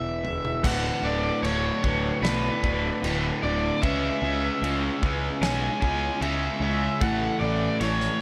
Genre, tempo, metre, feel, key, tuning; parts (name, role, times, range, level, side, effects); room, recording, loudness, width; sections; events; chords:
post-rock; 75 BPM; 4/4; straight; D lydian; A4 = 442 Hz
overdriven electric guitar; melody; 0.0-8.2 s; B4 to G#5; -31 LUFS; equal; digital delay
ethereal airy pad; sustained chords; 0.0-8.2 s; C#3 to G#5; -44 LUFS; equal
electric guitar through a small old amp; arpeggios; 0.0-0.6 s; E3 to E4; -40 LUFS; equal; digital delay
vibraphone with medium hard mallets; arpeggios; 0.0-7.8 s; A4 to D5; -40 LUFS; equal; digital delay
fuzz picked electric bass; bass; 0.0-8.1 s; D1 to C#2; -32 LUFS; equal; overdrive
loose indie drum kit; drums; 0.2-8.1 s; crash cymbal, kick drum, snare drum, toms; -34 LUFS; equal
cranked stack guitar; riff; 0.6-8.2 s; D2 to C#4; -33 LUFS; equal; overdrive, harmonic tremolo
overdriven semi-hollow guitar; riff; 0.6-8.2 s; D2 to C#4; -33 LUFS; equal
light reverb, studio reverb; -25 LUFS; mono
0.6-8.2 A section
0.0 E7; 0.6 D6; 3.8 C#m7; 7.0 Amaj7